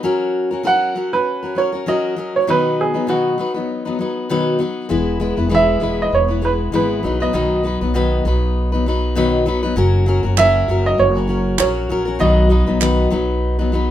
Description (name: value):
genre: acoustic pop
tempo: 99 BPM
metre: 4/4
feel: swing 55% on 16ths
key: B major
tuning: A4 = 440 Hz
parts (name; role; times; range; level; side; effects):
- fingerpicked steel-string acoustic guitar; accompaniment; 0.0-13.9 s; B2 to B4; -19 LUFS; left 3 dB; none
- clear upright piano; melody; 0.7-12.8 s; F#4 to F#5; -18 LUFS; right 4 dB; none
- upright bass; bass; 4.9-13.9 s; E1 to B1; -18 LUFS; equal; none
- group handclap; percussion; 10.4-13.0 s; none; -22 LUFS; right 7 dB; none
room: light reverb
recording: minimal, uncompressed stereo recording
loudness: -15 LUFS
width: side -11 dB against mid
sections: 0.0-4.9 A section; 4.9-13.9 B section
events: none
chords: 0.0 F#; 2.5 B; 4.9 E; 7.0 B; 9.8 F#; 12.2 B